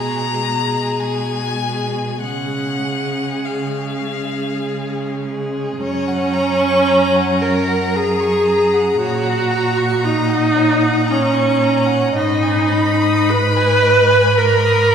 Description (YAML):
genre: classical, slow romantic movement for string quartet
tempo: 48-58 BPM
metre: 3/4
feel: rubato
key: F# major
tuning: A4 = 439 Hz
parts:
  - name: rich violin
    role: melody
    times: 0.0-14.9 s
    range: E#5 to B5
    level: -25 LUFS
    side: left 5 dB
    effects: none
  - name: rich violin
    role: second line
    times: 0.0-14.9 s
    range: G#4 to D#6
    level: -28 LUFS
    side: left 3 dB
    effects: none
  - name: rich viola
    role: accompaniment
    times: 0.0-14.9 s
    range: G#3 to B4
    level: -16 LUFS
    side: equal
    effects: none
  - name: rich cello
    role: bass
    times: 0.0-14.9 s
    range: F#2 to C#3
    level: -21 LUFS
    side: right 2 dB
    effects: none
room: wet concert hall reverb, RT60 2.4 s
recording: recorded in a church or concert hall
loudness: -15 LUFS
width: side -7 dB against mid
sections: 0.0-5.8 A section; 5.8-14.9 B section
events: none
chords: 0.0 G#m/B; 2.2 C#; 5.8 F#; 9.0 F#/A#; 12.2 G#m